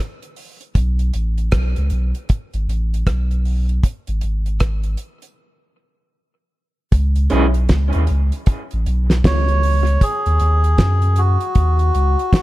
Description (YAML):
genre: dub reggae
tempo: 78 BPM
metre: 4/4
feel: swing 62% on 16ths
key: unclear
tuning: A4 = 440 Hz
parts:
  - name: damped 70s drum kit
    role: drums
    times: 0.2-12.4 s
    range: hi-hat, kick drum, rim click, snare drum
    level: -17 LUFS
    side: equal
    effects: none
  - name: warm sub bass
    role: bass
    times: 0.8-12.2 s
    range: G#1 to F#2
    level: -16 LUFS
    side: equal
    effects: none
  - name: electric guitar through a small old amp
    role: accompaniment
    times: 7.3-7.5 s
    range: G#3 to G#4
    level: -22 LUFS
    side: right 1 dB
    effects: tremolo, high-pass filter, tape echo
  - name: melodica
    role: melody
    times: 9.3-12.4 s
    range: F#4 to C#5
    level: -20 LUFS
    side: equal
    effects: tape echo
room: little or no reverb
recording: none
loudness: -15 LUFS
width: side -17 dB against mid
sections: 0.0-6.9 A section; 6.9-12.4 B section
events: break 0.0-6.9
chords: 0.0 N.C.; 10.0 C#sus4 (rootless)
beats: | 0.75 1.53 2.30 3.07 | 3.84 4.61 5.38 6.15 | 6.92 7.70 8.47 9.24 | 10.01 10.78 11.55 12.32